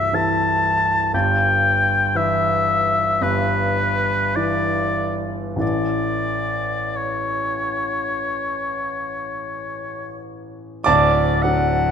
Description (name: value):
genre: classical, romantic duo for oboe and grand piano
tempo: 45-61 BPM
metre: 4/4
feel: rubato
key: unclear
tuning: A4 = 440 Hz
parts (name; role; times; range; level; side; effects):
- warm oboe; melody; 0.0-11.9 s; B4 to A5; -20 LUFS; left 2 dB; none
- warm concert grand piano; accompaniment; 0.0-11.9 s; C1 to D6; -22 LUFS; right 1 dB; none
room: wet scoring stage reverb, RT60 1.6 s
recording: none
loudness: -18 LUFS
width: side -7 dB against mid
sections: 0.0-10.9 A section; 10.9-11.9 B section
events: none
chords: 0.0 Am/C; 1.1 Em/G; 5.6 A; 10.9 D